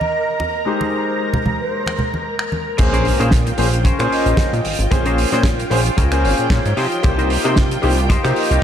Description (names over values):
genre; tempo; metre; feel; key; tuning
nu-disco, nu disco; 113 BPM; 4/4; swing 55% on 16ths; Bb dorian; A4 = 440 Hz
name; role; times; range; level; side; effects
mellow hollow concert flute; melody; 0.0-8.6 s; C5 to Eb5; -26 LUFS; right 2 dB; ping-pong delay
clear grand piano; accompaniment; 0.0-8.6 s; Ab3 to C5; -22 LUFS; left 2 dB; wide subtle chorus, tape echo
string machine, full ensemble; sustained chords; 0.0-8.6 s; F4 to Bb5; -24 LUFS; equal; ensemble chorus, sidechain pumping
congas; percussion; 0.0-2.6 s; none; -24 LUFS; right 1 dB; none
damped 70s drum kit; drums; 1.9-8.6 s; crash cymbal, finger snaps, hi-hat, snare drum; -25 LUFS; right 2 dB; studio reverb
semi-hollow electric guitar; riff; 2.8-8.6 s; Db4 to C5; -25 LUFS; left 3 dB; analog chorus, vintage 12-bit sampler grit, tape echo
chorused synth bass; bass; 2.8-8.6 s; Ab1 to C3; -19 LUFS; equal; none
kick drum; drums; 2.8-8.2 s; none; -17 LUFS; equal; studio reverb
impact; sound effects; 2.8-4.9 s; none; -27 LUFS; equal; none
room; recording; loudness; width
moderate lush hall reverb, RT60 1.7 s, small room reverb; dreamy mix soaked in reverb; -15 LUFS; side -9 dB against mid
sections
0.0-2.8 A section; 2.8-8.6 B section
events
drop 2.8-8.6; impact 2.8-4.9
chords
0.0 Cm7; 0.7 Abmaj7; 2.8 Bbm9; 6.8 Cm7